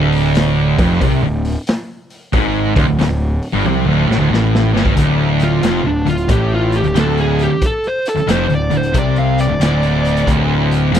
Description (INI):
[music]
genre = stoner and doom metal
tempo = 91 BPM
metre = 4/4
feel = swing 65% on 8ths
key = D minor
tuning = A4 = 440 Hz
[part]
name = distorted electric guitar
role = riff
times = 0.0-11.0 s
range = D2 to C3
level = -21 LUFS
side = equal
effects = overdrive
[part]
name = thick fuzz guitar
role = riff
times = 0.0-11.0 s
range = D2 to C3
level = -19 LUFS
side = left 7 dB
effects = distortion
[part]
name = thick fuzz guitar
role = riff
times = 0.0-11.0 s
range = D2 to C3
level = -18 LUFS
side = right 6 dB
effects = distortion
[part]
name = fuzz picked electric bass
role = bass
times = 0.0-11.0 s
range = D1 to C2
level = -20 LUFS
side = equal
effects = overdrive
[part]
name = raw garage drum kit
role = drums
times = 0.1-11.0 s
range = hi-hat, kick drum, snare drum, toms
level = -19 LUFS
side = equal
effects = none
[part]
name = fuzz lead guitar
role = melody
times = 5.4-10.3 s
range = D4 to F5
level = -19 LUFS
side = equal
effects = distortion, slapback echo
[sound]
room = little or no reverb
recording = none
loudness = -13 LUFS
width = side -9 dB against mid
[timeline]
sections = 0.0-5.0 A section; 5.0-11.0 B section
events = drum fill 3.6-5.0; lead electric guitar solo 5.0-11.0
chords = 0.0 Dm